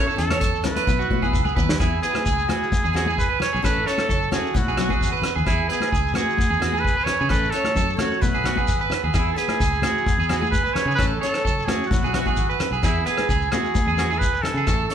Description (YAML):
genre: highlife guitar band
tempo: 131 BPM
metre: 4/4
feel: straight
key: E major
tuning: A4 = 440 Hz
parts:
  - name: clear trumpet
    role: melody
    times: 0.0-14.9 s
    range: E4 to C#5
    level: -25 LUFS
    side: right 1 dB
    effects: none
  - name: picked steel-string acoustic guitar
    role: accompaniment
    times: 0.0-14.9 s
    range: F#3 to A4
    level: -31 LUFS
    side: left 5 dB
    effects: none
  - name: overdriven combo organ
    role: sustained chords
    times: 0.0-14.9 s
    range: F#5 to E6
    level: -35 LUFS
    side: left 2 dB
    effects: none
  - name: electric guitar at the edge of break-up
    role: arpeggios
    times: 0.0-14.9 s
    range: F#4 to C#5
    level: -25 LUFS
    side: right 6 dB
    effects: none
  - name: fingered electric bass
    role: bass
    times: 0.0-14.9 s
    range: F#1 to C#3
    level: -27 LUFS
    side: equal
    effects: none
  - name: shekere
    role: percussion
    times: 0.1-14.9 s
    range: none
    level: -32 LUFS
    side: left 2 dB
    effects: none
  - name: vintage drum kit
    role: drums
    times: 0.2-14.9 s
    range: hi-hat, kick drum, rim click, snare drum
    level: -25 LUFS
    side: equal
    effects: none
  - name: congas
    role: percussion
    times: 0.3-14.5 s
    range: none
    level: -30 LUFS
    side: left 2 dB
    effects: none
room: moderate large studio reverb, RT60 1.2 s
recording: band playing live in one room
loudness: -19 LUFS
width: side -9 dB against mid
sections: 0.0-1.8 A section; 1.8-14.9 B section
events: drum fill 0.9-1.8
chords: 0.0 A; 0.9 Bsus4; 1.8 E; 3.6 A; 4.5 Bsus4; 5.5 E; 7.3 A; 8.2 Bsus4; 9.1 E; 11.0 A; 11.9 Bsus4; 12.8 E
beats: 0.42 0.88 1.33 | 1.79 2.25 2.71 3.17 | 3.63 4.09 4.55 5.01 | 5.46 5.92 6.38 6.84 | 7.30 7.76 8.22 8.68 | 9.14 9.60 10.06 10.52 | 10.98 11.44 11.90 12.36 | 12.82 13.28 13.74 14.20 | 14.66